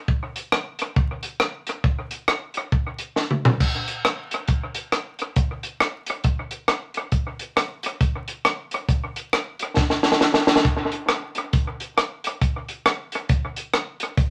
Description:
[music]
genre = ska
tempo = 136 BPM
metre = 4/4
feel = swing 61% on 8ths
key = none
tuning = none
[part]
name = compact cocktail drum kit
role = drums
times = 0.1-14.3 s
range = crash cymbal, hi-hat, kick drum, rim click, snare drum, toms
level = -23 LUFS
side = equal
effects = analog delay
[sound]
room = wet studio ambience, RT60 0.5 s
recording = vinyl crackle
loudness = -24 LUFS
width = mono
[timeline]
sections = 0.0-3.6 A section; 3.6-14.3 B section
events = drum fill 3.2-3.6, 9.8-10.7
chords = none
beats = | 0.08 0.52 0.96 1.40 | 1.84 2.28 2.72 3.16 | 3.60 4.04 4.48 4.92 | 5.36 5.80 6.24 6.68 | 7.12 7.57 8.01 8.45 | 8.89 9.33 9.77 10.21 | 10.65 11.09 11.53 11.97 | 12.41 12.86 13.30 13.74 | 14.18

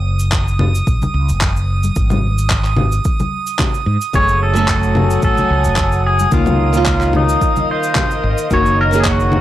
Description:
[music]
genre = sunset chillout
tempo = 110 BPM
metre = 4/4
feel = swing 54% on 16ths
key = unclear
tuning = A4 = 439 Hz
[part]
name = mellow fretless electric bass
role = bass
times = 0.0-9.4 s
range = Gb1 to Ab2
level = -16 LUFS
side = equal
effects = analog chorus
[part]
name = drifting glass-harmonics texture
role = texture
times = 0.0-9.4 s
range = Eb6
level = -26 LUFS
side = right 7 dB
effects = chorus, built-in reverb
[part]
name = electronic cabasa, handclaps and congas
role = drums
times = 0.2-9.4 s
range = none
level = -21 LUFS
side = left 1 dB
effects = none
[part]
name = electronic kick drum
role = drums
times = 0.3-9.2 s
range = none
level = -19 LUFS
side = equal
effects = none
[part]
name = congas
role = percussion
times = 0.6-9.4 s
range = none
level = -24 LUFS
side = left 1 dB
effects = none
[part]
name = nylon-string guitar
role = accompaniment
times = 4.1-9.4 s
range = Eb3 to A4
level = -19 LUFS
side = moving between left 5 dB and right 3 dB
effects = auto-pan
[part]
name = airy breathy pad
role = sustained chords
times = 4.6-9.4 s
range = A3 to Ab5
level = -25 LUFS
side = equal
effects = chorus
[part]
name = pedal steel guitar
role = melody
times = 4.2-9.4 s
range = Eb4 to Db5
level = -18 LUFS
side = left 1 dB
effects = analog delay
[sound]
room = little or no reverb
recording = dry, gritty hardware recording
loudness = -13 LUFS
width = side -13 dB against mid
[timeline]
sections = 0.0-9.4 A section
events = none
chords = 0.0 Gb5; 2.0 Ab5; 4.1 Gbmadd9; 6.3 Db69; 8.5 Gb6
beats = 0.32 0.87 1.41 | 1.96 2.50 3.05 3.60 | 4.14 4.69 5.23 5.78 | 6.32 6.87 7.41 7.96 | 8.51 9.05

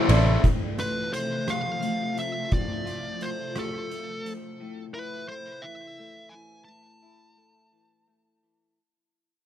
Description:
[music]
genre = post-rock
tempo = 58 BPM (dotted quarters)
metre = 6/8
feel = straight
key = A minor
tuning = A4 = 444 Hz
[part]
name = granular cloud pad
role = sustained chords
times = 0.0-4.6 s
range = C3 to F4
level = -35 LUFS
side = equal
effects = built-in reverb, phaser
[part]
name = oversized low-tuned drum kit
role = drums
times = 0.1-4.4 s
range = hi-hat, kick drum, ride cymbal, rim click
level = -28 LUFS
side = equal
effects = none
[part]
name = electric guitar through a small old amp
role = arpeggios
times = 0.4-8.8 s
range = A2 to F4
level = -38 LUFS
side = left 3 dB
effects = wide subtle chorus, digital delay
[part]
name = fuzz lead guitar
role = melody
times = 0.8-8.4 s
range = A4 to A5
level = -33 LUFS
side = equal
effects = distortion, digital delay
[sound]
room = little or no reverb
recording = dark, warm production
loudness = -25 LUFS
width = side -11 dB against mid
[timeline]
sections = 0.4-8.8 A section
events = fade-out 0.4-8.8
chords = 0.4 F/A; 4.6 A5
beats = | 0.44 1.48 | 2.52 3.56 | 4.60 5.64 | 6.69 7.73

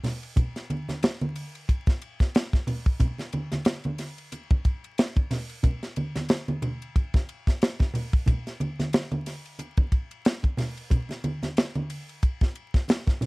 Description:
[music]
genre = funk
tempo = 91 BPM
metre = 4/4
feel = swing 56% on 16ths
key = none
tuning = none
[part]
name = tight funk drum kit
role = drums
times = 0.0-13.3 s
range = hi-hat, kick drum, ride cymbal, snare drum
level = -23 LUFS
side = equal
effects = none
[part]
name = congas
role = percussion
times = 0.0-13.3 s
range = none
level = -30 LUFS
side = right 1 dB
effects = none
[sound]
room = little or no reverb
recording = dry, close 1970s-style studio recording, vinyl crackle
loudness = -24 LUFS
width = side -26 dB against mid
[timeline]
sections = 0.0-13.3 A section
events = none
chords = none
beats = | 0.37 1.03 1.69 2.35 | 3.01 3.67 4.32 4.98 | 5.64 6.30 6.96 7.62 | 8.27 8.93 9.59 10.25 | 10.91 11.57 12.23 12.89

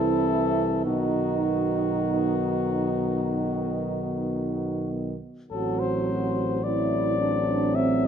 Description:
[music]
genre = classical, hymn-like piece for brass band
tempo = 52 BPM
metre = 4/4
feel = rubato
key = unclear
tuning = A4 = 440 Hz
[part]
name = warm flugelhorn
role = melody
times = 0.0-8.1 s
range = F#4 to E5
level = -30 LUFS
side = left 9 dB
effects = none
[part]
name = warm French horn section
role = second line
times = 0.0-8.1 s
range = C4 to F#4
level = -29 LUFS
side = right 9 dB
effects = none
[part]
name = bright trombone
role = accompaniment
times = 0.0-8.1 s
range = D#3 to F#3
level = -31 LUFS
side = right 4 dB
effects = none
[part]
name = dark euphonium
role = accompaniment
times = 0.0-8.1 s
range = B3 to C4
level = -31 LUFS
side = left 3 dB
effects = none
[part]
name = mellow tuba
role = bass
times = 0.0-8.1 s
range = A1 to C2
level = -29 LUFS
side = equal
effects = none
[sound]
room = moderate recital hall reverb, RT60 1.5 s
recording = none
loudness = -23 LUFS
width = side -8 dB against mid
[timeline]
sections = 0.0-8.1 A section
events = none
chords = 0.0 Am; 0.9 B; 5.5 D7/A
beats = | 0.85 2.04 3.20 4.37 | 5.52 6.64 7.76

